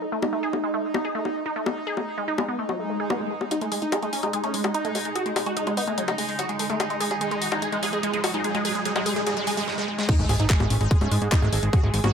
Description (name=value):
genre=psychedelic trance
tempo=146 BPM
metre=4/4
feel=straight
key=unclear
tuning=A4 = 439 Hz
part: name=bubbling stepped-filter texture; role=sustained chords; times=0.0-12.1 s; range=D#4 to G#4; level=-31 LUFS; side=right 2 dB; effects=chorus, built-in reverb, vintage 12-bit sampler grit, sidechain pumping
part: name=wide unison pluck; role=riff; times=0.0-12.1 s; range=F#3 to A4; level=-29 LUFS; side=right 1 dB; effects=auto-pan, sidechain pumping, dub echo
part: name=garage drum kit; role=drums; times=0.2-12.1 s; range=bongos, crash cymbal, handclaps, hi-hat, snare drum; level=-29 LUFS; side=left 4 dB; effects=high-pass filter on hats, high-pass filter on perc, high-pass filter on cymbals, high-pass filter on snare
part: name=swell, riser and sub drop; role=sound effects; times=2.8-11.7 s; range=none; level=-33 LUFS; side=equal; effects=none
part: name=supersaw stab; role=melody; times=3.5-12.1 s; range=G#3 to G#4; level=-28 LUFS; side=right 1 dB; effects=phaser, sidechain pumping, ping-pong delay
part: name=electronic kick drum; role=drums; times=10.1-11.8 s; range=none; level=-20 LUFS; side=equal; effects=none
part: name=fat analog bass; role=bass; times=10.2-12.1 s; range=G#1 to G#2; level=-22 LUFS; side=equal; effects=none
room=light reverb, digital ambience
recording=none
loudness=-22 LUFS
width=side -7 dB against mid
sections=0.0-3.5 A section; 3.5-10.1 B section; 10.1-12.1 C section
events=filter sweep on synth arpeggio sound 0.0-3.5, 3.5-10.1; filter sweep on synth texture 0.0-3.5; swell 2.8-3.5; build-up 3.5-10.1; riser 3.5-9.7; drum fill 9.7-10.1; drop 10.1-12.1; impact 10.1-11.7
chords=0.0 G#5